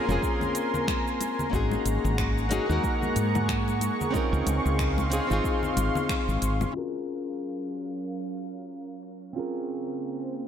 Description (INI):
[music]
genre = sunset chillout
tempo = 92 BPM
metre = 4/4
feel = swing 57% on 16ths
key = unclear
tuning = A4 = 441 Hz
[part]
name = nylon-string guitar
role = accompaniment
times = 0.0-10.5 s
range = Bb3 to Bb4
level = -30 LUFS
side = moving between left 5 dB and right 6 dB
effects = auto-pan, low-pass filter, analog delay, shimmer reverb
[part]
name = lush unison pad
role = sustained chords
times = 0.0-10.5 s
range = Db3 to Db6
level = -32 LUFS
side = equal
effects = chorus, shimmer reverb
[part]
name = woody fretless electric bass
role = bass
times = 0.1-6.6 s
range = F1 to Ab2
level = -27 LUFS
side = equal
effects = none
[part]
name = deep house drum kit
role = drums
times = 0.1-10.5 s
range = cabasa, finger snaps, hi-hat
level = -37 LUFS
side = equal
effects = low-pass filter on perc, low-pass filter on hats, low-pass filter on snare, low-pass filter on room
[part]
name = congas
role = percussion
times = 0.1-6.7 s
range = none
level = -35 LUFS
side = left 3 dB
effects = none
[part]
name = electronic kick drum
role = drums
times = 0.2-6.2 s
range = none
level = -31 LUFS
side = equal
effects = none
[sound]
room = moderate plate reverb, RT60 2.7 s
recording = dreamy mix soaked in reverb, low-pass filter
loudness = -25 LUFS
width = side -9 dB against mid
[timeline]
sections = 0.0-6.7 A section; 6.7-10.5 B section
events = filter sweep on analog synth pad 6.7-10.5; filter sweep 6.7-10.5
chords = 0.0 Bbm9; 1.5 Ab9sus4; 4.1 Dbmaj7; 6.7 Gbmaj7; 9.4 Bbm9